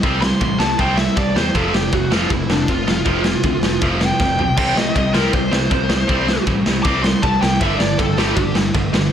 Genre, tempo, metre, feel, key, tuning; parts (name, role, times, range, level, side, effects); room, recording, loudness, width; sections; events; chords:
punk rock; 158 BPM; 4/4; straight; C major; A4 = 440 Hz
tight distorted guitar; riff; 0.0-9.1 s; F2 to C4; -20 LUFS; equal; distortion
modern bright picked electric bass; bass; 0.0-9.1 s; F1 to E2; -23 LUFS; equal
raw garage drum kit; drums; 0.0-9.0 s; crash cymbal, kick drum, ride cymbal, snare drum, toms; -19 LUFS; equal
bluesy overdriven lead guitar; melody; 0.2-8.6 s; D4 to D6; -21 LUFS; equal; distortion, digital delay
light reverb; -15 LUFS; side -9 dB against mid
0.0-9.1 A section
lead electric guitar solo 0.0-9.1; drum fill 4.2-4.6
0.0 C5; 1.5 F5; 4.6 C5; 7.6 G5